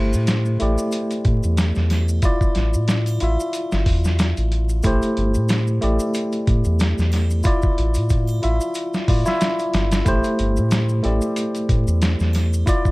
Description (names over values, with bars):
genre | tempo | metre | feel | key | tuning
trip hop | 92 BPM | 4/4 | swing 56% on 16ths | A minor | A4 = 445 Hz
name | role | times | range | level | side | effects
tine electric piano | accompaniment | 0.0-12.9 s | A3 to E5 | -23 LUFS | equal | harmonic tremolo, vintage 12-bit sampler grit, low-pass filter, tape echo
round analog bass | bass | 0.0-12.6 s | G1 to A2 | -19 LUFS | equal | none
maracas and triangle | percussion | 0.1-12.9 s | none | -39 LUFS | equal | none
dusty soul sampler-style drum kit | drums | 0.3-12.9 s | hi-hat, kick drum, snare drum | -21 LUFS | equal | overdrive, vintage 12-bit sampler grit
room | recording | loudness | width
little or no reverb | vinyl crackle | -17 LUFS | side -22 dB against mid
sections
0.0-12.9 A section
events
filter sweep on tine electric piano 0.0-12.9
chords
0.0 Am7; 2.2 Dmadd9/A; 4.8 Am7; 7.5 Dmadd9/A; 10.1 Am7